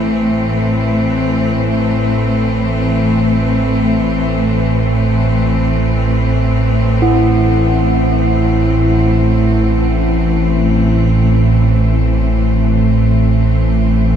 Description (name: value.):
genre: ambient.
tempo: free time.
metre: none.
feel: none.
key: unclear.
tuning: A4 = 441 Hz.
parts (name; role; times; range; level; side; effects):
bright studio cello section; sustained chords; 0.0-14.2 s; A2 to C4; -16 LUFS; left 2 dB; shimmer reverb.
deep rumbling drone; drone; 0.0-14.2 s; A1 to A2; -14 LUFS; right 1 dB; built-in reverb.
quartz singing bowl; texture; 0.0-14.2 s; E4; -20 LUFS; equal; stereo widening, shimmer reverb.
room: wet huge ambient reverb, RT60 7.5 s.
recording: in a vast, echoing space.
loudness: -11 LUFS.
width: side -8 dB against mid.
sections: 0.0-14.2 A section.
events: fade-in on synth drone 0.0-14.2; fade-out on cello section 0.0-14.2.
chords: 0.0 Am.